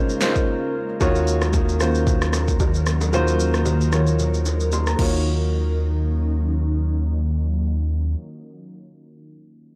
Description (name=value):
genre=amapiano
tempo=113 BPM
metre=4/4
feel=swing 55% on 16ths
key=Eb dorian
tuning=A4 = 436 Hz
part: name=dark baby grand piano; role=accompaniment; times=0.0-9.8 s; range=Db3 to C6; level=-26 LUFS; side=equal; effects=low-pass filter
part: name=ethereal airy pad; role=sustained chords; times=0.0-8.2 s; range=Eb3 to F5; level=-30 LUFS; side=equal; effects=ensemble chorus, built-in reverb, phaser, low-pass filter
part: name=deep house drum kit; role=drums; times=0.1-5.1 s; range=crash cymbal, kick drum, rim click, shaker, snare drum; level=-26 LUFS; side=equal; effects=none
part: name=bongos and congas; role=percussion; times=0.2-5.5 s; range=none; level=-34 LUFS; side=equal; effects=none
part: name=warm sub bass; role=bass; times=1.0-8.2 s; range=Eb2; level=-24 LUFS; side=equal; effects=none
room=little or no reverb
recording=dry, gritty hardware recording, transformer saturation, cassette tape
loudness=-21 LUFS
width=mono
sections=0.0-1.0 A section; 1.0-5.3 B section; 5.3-9.5 C section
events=break 0.5-1.0; filter sweep 1.0-5.3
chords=0.0 Db6; 1.0 Ebm7